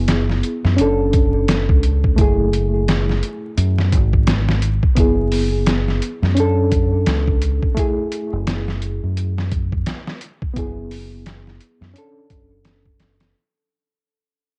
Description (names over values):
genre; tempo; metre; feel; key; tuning
trip hop; 86 BPM; 4/4; swing 59% on 16ths; F# minor; A4 = 440 Hz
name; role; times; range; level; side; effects
reed electric piano; accompaniment; 0.0-13.4 s; A3 to A4; -24 LUFS; equal; harmonic tremolo, cassette tape, tape echo
deep dub fingered electric bass; bass; 0.0-13.3 s; F#1 to F#2; -21 LUFS; equal; tube saturation
trip hop sampler-style drum kit; drums; 0.1-13.3 s; hi-hat, kick drum, snare drum; -22 LUFS; equal; overdrive, cassette tape
room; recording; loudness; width
digital ambience; home recording on cassette, vinyl crackle, nothing above 10.3 kHz; -18 LUFS; mono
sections
0.0-13.3 A section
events
fade-out 5.9-13.3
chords
0.0 F#9sus4; 0.8 Dmaj7/F#; 2.2 F#m9; 5.0 F#9sus4; 6.4 Dmaj7; 7.8 F#m9; 10.6 F#9sus4; 11.9 Dmaj7/F#